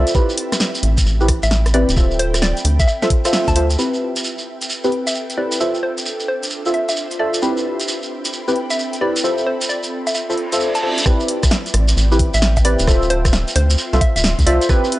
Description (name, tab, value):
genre	UK garage, two-step garage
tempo	132 BPM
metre	4/4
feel	swing 65% on 16ths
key	A minor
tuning	A4 = 440 Hz
part	hollow square pluck	melody	0.0-14.8 s	C5 to A5	-24 LUFS	equal	chorus, tape echo
part	deep mellow chord stab	stabs	0.0-15.0 s	C4 to E5	-20 LUFS	equal	chorus, tape echo
part	rubbery square bass	bass	0.0-3.8, 11.7-14.6 s	D1 to D2	-16 LUFS	equal	sidechain pumping
part	ethereal airy pad	texture	0.0-15.0 s	C4 to C6	-29 LUFS	equal	ensemble chorus, built-in reverb, sidechain pumping
part	electronic kick drum	drums	0.1-3.5, 11.1-14.8 s	none	-16 LUFS	equal	none
part	punchy analog drum machine	drums	0.1-15.0 s	bongos, hi-hat, rim click, snare drum	-22 LUFS	equal	none
part	shekere	percussion	0.1-14.9 s	none	-24 LUFS	right 2 dB	none
part	reverse cymbal	sound effects	10.4-11.1 s	none	-25 LUFS	right 1 dB	none
room	light reverb, digital ambience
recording	dry, gritty hardware recording, nothing above 10.6 kHz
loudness	-15 LUFS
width	side -16 dB against mid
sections	0.0-3.8 A section; 3.8-11.1 B section; 11.1-15.0 C section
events	filter sweep on synth stab 0.0-3.8; band accent 3.3; reverse cymbal 10.4-11.1; drop 11.1-15.0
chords	0.1 Am9; 2.0 Dm9; 3.8 Am9; 5.6 Dm9; 7.4 Am9; 9.2 Dm9; 11.1 Am9; 12.9 Dm9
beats	| 0.15 0.60 1.06 1.51 | 1.97 2.42 2.88 3.33 | 3.78 4.24 4.69 5.15 | 5.60 6.06 6.51 6.97 | 7.42 7.88 8.33 8.78 | 9.24 9.69 10.15 10.60 | 11.06 11.51 11.97 12.42 | 12.88 13.33 13.78 14.24 | 14.69